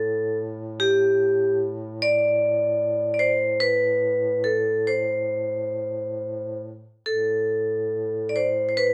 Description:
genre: caucasian folk, Caucasian lament.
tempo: 67-76 BPM.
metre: 3/4.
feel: rubato.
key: A minor.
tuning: A4 = 440 Hz.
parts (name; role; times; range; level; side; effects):
vibraphone with hard mallets; melody; 0.0-8.9 s; G4 to D5; -24 LUFS; equal; none.
mellow duduk; drone; 0.0-8.9 s; A2; -36 LUFS; equal; none.
room: light reverb.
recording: band playing live in one room.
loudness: -23 LUFS.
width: mono.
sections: 0.0-8.9 A section.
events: none.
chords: none.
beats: 0.40 1.20 | 2.01 2.80 3.61 | 4.45 5.30 6.17 | 7.06 7.94 8.78.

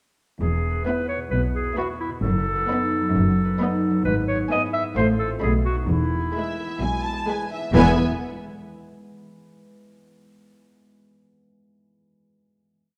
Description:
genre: cinematic, playful, whimsical film cue.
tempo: 131 BPM.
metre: 4/4.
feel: straight.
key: E major.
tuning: A4 = 440 Hz.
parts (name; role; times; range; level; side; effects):
bright clarinet; second line; 0.4-7.9 s; E4 to E5; -29 LUFS; equal; none.
concert harp; arpeggios; 0.4-9.6 s; E2 to B4; -30 LUFS; equal; none.
rich studio double bass section; bass; 0.4-8.0 s; E1 to B1; -28 LUFS; equal; none.
warm studio cello section; bass; 0.4-8.0 s; E2 to B2; -28 LUFS; equal; none.
rich studio violin section; melody; 0.9-8.0 s; G#5 to C6; -33 LUFS; equal; none.
warm studio violin section; second line; 0.9-8.0 s; D#5 to A5; -35 LUFS; equal; none.
warm studio viola section; accompaniment; 0.9-8.0 s; G#3 to B3; -27 LUFS; equal; none.
room: moderate scoring stage reverb, RT60 1.8 s.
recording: dark, warm production.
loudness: -23 LUFS.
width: mono.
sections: 0.4-7.8 A section; 7.8-9.6 final chord.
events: none.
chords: 0.4 E; 2.2 B7/F#; 4.1 E/G#; 5.0 F/A; 5.4 B7; 5.9 E.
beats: | 0.40 0.86 1.32 1.78 | 2.24 2.70 3.15 3.61 | 4.06 4.51 4.97 5.43 | 5.89 6.36 6.82 7.29 | 7.75 8.21 8.67 9.13.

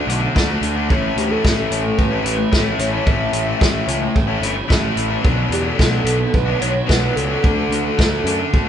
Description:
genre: indie rock.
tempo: 110 BPM.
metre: 4/4.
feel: straight.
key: A major.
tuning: A4 = 438 Hz.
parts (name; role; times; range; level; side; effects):
hollow square lead; melody; 0.0-8.7 s; G4 to E5; -24 LUFS; right 1 dB; chorus.
biting overdriven guitar; riff; 0.0-8.7 s; A2 to F#4; -22 LUFS; left 5 dB; none.
fuzz guitar; riff; 0.0-8.7 s; A2 to F#4; -25 LUFS; right 5 dB; distortion.
fuzz picked electric bass; bass; 0.1-8.7 s; G1 to F#2; -22 LUFS; equal; overdrive.
vintage drum kit; drums; 0.1-8.7 s; hi-hat, kick drum, snare drum; -18 LUFS; equal; none.
room: moderate large studio reverb, RT60 0.9 s.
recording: band playing live in one room, nothing above 10.7 kHz.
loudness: -15 LUFS.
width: side -9 dB against mid.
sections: 0.0-8.7 A section.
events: none.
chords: 0.0 D; 0.9 A; 5.2 Bm; 7.4 D.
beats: 0.34 | 0.89 1.43 1.98 2.52 | 3.06 3.61 4.16 4.70 | 5.25 5.79 6.34 6.88 | 7.43 7.98 8.52.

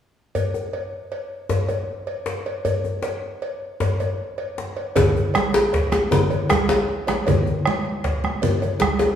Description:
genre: west african traditional, West African drum ensemble.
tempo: 104 BPM (dotted quarters).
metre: 12/8.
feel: straight.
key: none.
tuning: none.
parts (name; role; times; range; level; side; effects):
cowbell; percussion; 0.3-9.2 s; none; -29 LUFS; equal; none.
djembe; percussion; 0.4-9.1 s; none; -26 LUFS; left 2 dB; none.
bombo; percussion; 5.0-9.0 s; none; -24 LUFS; right 1 dB; none.
congas; percussion; 5.0-9.0 s; none; -24 LUFS; right 2 dB; none.
djembe; percussion; 5.0-9.2 s; none; -21 LUFS; left 1 dB; none.
room: wet recital hall reverb, RT60 1.4 s.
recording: recorded in a church or concert hall, studio ambience.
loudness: -20 LUFS.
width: side -9 dB against mid.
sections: 0.4-5.0 A section; 5.0-9.2 B section.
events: none.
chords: none.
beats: | 0.35 0.93 1.51 2.08 | 2.66 3.24 3.81 4.39 | 4.97 5.54 6.12 6.70 | 7.27 7.85 8.42 9.00.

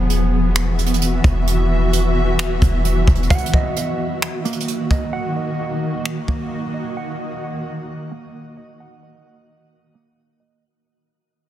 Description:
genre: hip hop, atmospheric cloud-rap.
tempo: 131 BPM.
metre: 4/4.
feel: half-time.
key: Eb minor.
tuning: A4 = 440 Hz.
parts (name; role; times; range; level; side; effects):
granular cloud pad; sustained chords; 0.0-10.6 s; Eb3 to E5; -23 LUFS; left 1 dB; built-in reverb, sidechain pumping, low-pass filter.
clean 808-style bass; bass; 0.0-3.3 s; Eb1 to E1; -18 LUFS; equal; none.
jazz brush drum kit; drums; 0.1-6.4 s; finger snaps, hi-hat, kick drum; -20 LUFS; equal; soft clipping on snare.
mellow electric guitar; arpeggios; 3.3-10.6 s; Bb3 to Gb5; -27 LUFS; right 6 dB; analog chorus, low-pass filter, digital delay.
room: small room ambience.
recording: dense, heavily limited modern master.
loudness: -17 LUFS.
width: side -12 dB against mid.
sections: 0.0-3.3 A section; 3.3-10.6 B section.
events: fade-out 3.3-10.6; filter sweep 3.3-10.6.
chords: 0.0 Esus2; 3.3 Ebm.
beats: 0.10 0.56 1.01 | 1.47 1.93 2.39 2.85 | 3.30 3.76 4.22 4.68 | 5.14 5.59 6.05 6.51 | 6.97 7.43 7.88 8.34 | 8.80 9.26 9.72 10.17.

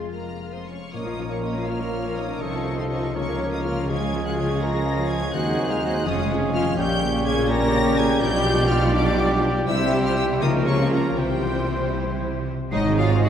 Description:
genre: classical, dramatic, fast romantic movement for symphony orchestra.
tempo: 72-84 BPM (dotted quarters).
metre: 6/8.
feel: rubato.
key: Bb minor.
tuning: A4 = 440 Hz.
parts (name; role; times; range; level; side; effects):
rich symphonic violin section; melody; 0.0-13.3 s; Eb5 to Bb6; -32 LUFS; left 2 dB; none.
rich symphonic violin section; second line; 0.0-13.3 s; Eb4 to F5; -34 LUFS; left 2 dB; none.
warm oboe; second line; 0.0-13.3 s; F4 to Eb5; -35 LUFS; right 1 dB; none.
clear symphonic viola section; accompaniment; 0.0-13.3 s; Eb3 to Ab4; -32 LUFS; equal; none.
mellow French horn section; sustained chords; 0.0-13.3 s; G3 to Bb4; -30 LUFS; left 2 dB; none.
concert harp; arpeggios; 0.0-13.3 s; Ab2 to F5; -30 LUFS; left 8 dB; none.
clear symphonic cello section; bass; 0.0-13.3 s; Eb2 to Db3; -28 LUFS; right 2 dB; none.
rich symphonic double bass section; bass; 0.0-13.3 s; F1 to Eb2; -29 LUFS; right 2 dB; none.
hollow concert flute; second line; 0.1-13.3 s; G4 to C7; -35 LUFS; left 1 dB; none.
mellow clarinet; second line; 0.9-13.3 s; Db4 to G4; -31 LUFS; equal; none.
mellow bassoon; accompaniment; 0.9-13.3 s; Gb3 to C4; -32 LUFS; right 1 dB; none.
warm trombone section; sustained chords; 0.9-13.3 s; Ab2 to Eb4; -30 LUFS; right 2 dB; none.
warm trumpet; stabs; 0.9-13.3 s; G4 to C5; -31 LUFS; right 1 dB; none.
room: wet concert hall reverb, RT60 2.6 s.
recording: none.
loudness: -20 LUFS.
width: side -9 dB against mid.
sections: 0.9-12.7 A section.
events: none.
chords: 0.0 Fm; 0.9 Bbm; 2.4 F7/C; 3.2 Bbm/Db; 3.9 Db; 5.3 Ab7/Eb; 6.1 Db/F; 6.8 Gdim/Bb; 8.2 G7/B; 9.7 C; 10.4 Bbm/Db; 11.2 C; 12.7 Ab7.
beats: 0.12 | 0.93 1.68 | 2.42 3.16 | 3.89 4.62 | 5.34 6.06 | 6.78 7.50 | 8.22 8.94 | 9.67 10.42 | 11.18 11.95 | 12.72.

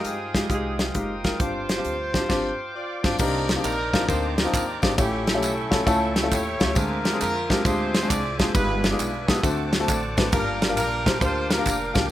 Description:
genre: uptempo gospel.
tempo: 134 BPM.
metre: 4/4.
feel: swing 66% on 8ths.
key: unclear.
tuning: A4 = 440 Hz.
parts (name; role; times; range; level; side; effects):
warm horn section; melody; 0.0-12.1 s; C4 to D5; -29 LUFS; equal; slapback echo.
warm upright piano; accompaniment; 0.0-12.0 s; G2 to C5; -26 LUFS; left 2 dB; plate reverb.
bright tonewheel organ; sustained chords; 0.0-12.1 s; F4 to Eb6; -33 LUFS; right 2 dB; slow rotary speaker, plate reverb.
modern studio drum kit; drums; 0.0-12.0 s; crash cymbal, hi-hat, kick drum, ride cymbal, snare drum; -24 LUFS; equal; none.
upright bass; bass; 0.1-12.1 s; F1 to G2; -32 LUFS; right 1 dB; none.
tambourine and handclaps; percussion; 3.2-12.0 s; none; -35 LUFS; equal; none.
room: light reverb.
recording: rough home demo mix.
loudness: -21 LUFS.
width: side -13 dB against mid.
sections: 0.0-3.2 A section; 3.2-12.1 B section.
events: band accent 2.3-3.2.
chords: 0.0 Fm9; 1.4 G7sus4; 3.2 Cm9; 5.0 A7b13; 6.8 Dm7b5; 8.5 G7b9b13; 9.4 D7; 10.3 Gm7.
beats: 0.06 0.50 0.95 | 1.40 1.85 2.30 2.75 | 3.19 3.64 4.09 4.54 | 4.98 5.43 5.88 6.32 | 6.77 7.21 7.66 8.10 | 8.55 8.99 9.44 9.88 | 10.33 10.77 11.22 11.66 | 12.11.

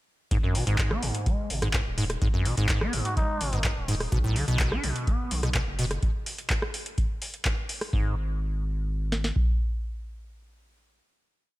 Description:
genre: acid house.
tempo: 126 BPM.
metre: 4/4.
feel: straight.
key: G# minor.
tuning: A4 = 440 Hz.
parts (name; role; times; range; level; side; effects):
liquid acid bass; riff; 0.3-8.2 s; F#2 to D4; -29 LUFS; equal; chorus, tube saturation.
saturated sub bass; bass; 0.3-9.3 s; D#1 to B1; -30 LUFS; equal; sidechain pumping.
booming analog drum machine; drums; 0.3-9.5 s; kick drum, snare drum; -27 LUFS; equal; studio reverb.
booming analog drum machine; drums; 0.3-7.9 s; handclaps, hi-hat, rim click; -32 LUFS; equal; studio reverb.
trumpet with cup mute; melody; 3.1-3.6 s; D#4 to F#4; -35 LUFS; left 1 dB; dub echo.
room: digital ambience.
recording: none.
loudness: -25 LUFS.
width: side -18 dB against mid.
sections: 0.3-7.9 drop; 7.9-11.6 final note.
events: drop 0.3-7.9.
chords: 0.3 G#m; 4.1 N.C..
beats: | 0.31 0.79 1.26 1.74 | 2.22 2.69 3.17 3.65 | 4.12 4.60 5.07 5.55 | 6.03 6.50 6.98 7.46 | 7.93 8.41 8.88 9.36.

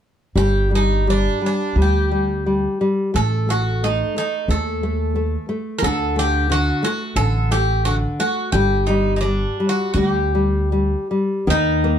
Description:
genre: fado-style ballad.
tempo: 76-91 BPM.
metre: 4/4.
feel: rubato.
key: unclear.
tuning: A4 = 439 Hz.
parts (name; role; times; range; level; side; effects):
Greek bouzouki; melody; 0.4-12.0 s; D4 to Bb4; -22 LUFS; right 1 dB; none.
nylon-string guitar; accompaniment; 0.4-12.0 s; D3 to Bb3; -21 LUFS; left 2 dB; none.
upright bass; bass; 0.4-12.0 s; G1 to D#2; -20 LUFS; right 1 dB; none.
room: light reverb.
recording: dark, warm production.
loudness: -17 LUFS.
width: side -9 dB against mid.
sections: 0.4-11.5 A section.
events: none.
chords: 0.4 G5; 3.1 D#(b5, no3)/A; 5.8 D5; 8.5 G5; 11.5 Eb5.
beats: | 0.36 1.07 1.77 2.46 | 3.14 3.82 4.48 5.15 | 5.82 6.49 7.17 7.85 | 8.53 9.22 9.94 10.71 | 11.47.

